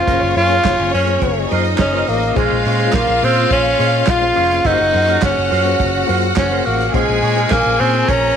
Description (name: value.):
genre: disco.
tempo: 105 BPM.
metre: 4/4.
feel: straight.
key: unclear.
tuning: A4 = 440 Hz.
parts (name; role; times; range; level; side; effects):
breathy tenor saxophone; melody; 0.0-8.4 s; Ab3 to F4; -16 LUFS; equal; none.
rich studio string section; second line; 0.0-8.4 s; Db4 to Bb5; -20 LUFS; equal; none.
electric guitar with an envelope filter; accompaniment; 0.0-8.3 s; Db4 to Db5; -25 LUFS; right 12 dB; spring reverb.
reed electric piano; accompaniment; 0.0-8.4 s; Bb3 to Eb5; -24 LUFS; left 14 dB; fast tremolo.
hollow-body short-scale fingered electric bass; bass; 0.1-8.3 s; F1 to Bb2; -21 LUFS; equal; none.
warm soul drum kit; drums; 0.1-8.2 s; handclaps, hi-hat, kick drum, snare drum; -22 LUFS; right 3 dB; none.
room: light reverb, small room ambience.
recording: 1960s-style stereo with parts hard left and right.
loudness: -13 LUFS.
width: side -8 dB against mid.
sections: 0.0-8.4 A section.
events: none.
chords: 0.1 Gbmaj9#11; 2.4 Bbm9; 4.7 Gbmaj9#11; 6.9 Bbm9.